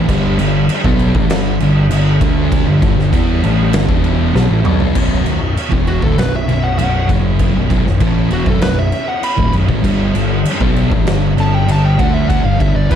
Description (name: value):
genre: stoner and doom metal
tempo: 98 BPM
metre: 4/4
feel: straight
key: B minor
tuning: A4 = 440 Hz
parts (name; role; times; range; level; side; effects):
- thick fuzz guitar; riff; 0.0-13.0 s; B1 to E4; -18 LUFS; left 8 dB; distortion
- thick fuzz guitar; riff; 0.0-13.0 s; B1 to E4; -18 LUFS; right 9 dB; distortion
- fuzz picked electric bass; bass; 0.0-13.0 s; B0 to E2; -18 LUFS; equal; overdrive
- percussive tonewheel organ; sustained chords; 0.1-13.0 s; G3 to C#5; -29 LUFS; left 1 dB; none
- oversized low-tuned drum kit; drums; 0.1-13.0 s; crash cymbal, kick drum, snare drum, toms; -17 LUFS; equal; none
- fuzz lead guitar; melody; 5.9-13.0 s; F#4 to B5; -20 LUFS; left 1 dB; distortion, slapback echo
room: light reverb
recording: dark, warm production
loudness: -12 LUFS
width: side -9 dB against mid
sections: 0.0-5.0 A section; 5.0-13.0 B section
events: drum fill 4.3-5.0; lead electric guitar solo 5.0-13.0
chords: 0.1 G5; 5.0 Bm; 9.8 G5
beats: | 0.08 0.69 1.30 1.91 | 2.52 3.13 3.73 4.34 | 4.95 5.56 6.17 6.78 | 7.39 8.01 8.62 9.23 | 9.84 10.46 11.07 11.68 | 12.30 12.91